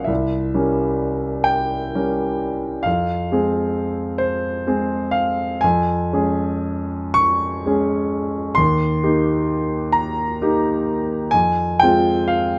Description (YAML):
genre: classical, romantic nocturne for solo piano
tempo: 38-44 BPM (dotted quarters)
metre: 12/8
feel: rubato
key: F minor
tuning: A4 = 441 Hz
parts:
  - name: warm concert grand piano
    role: solo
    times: 0.0-12.6 s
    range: Bb1 to Db6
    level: -20 LUFS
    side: equal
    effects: none
room: light reverb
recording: none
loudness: -20 LUFS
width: mono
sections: 0.0-12.6 A section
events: none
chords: 0.1 C7b9; 2.9 Fm; 5.6 Db/F; 8.6 Eb; 11.3 Fm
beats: | 0.09 1.48 2.85 4.21 | 5.63 7.16 8.56 9.95 | 11.34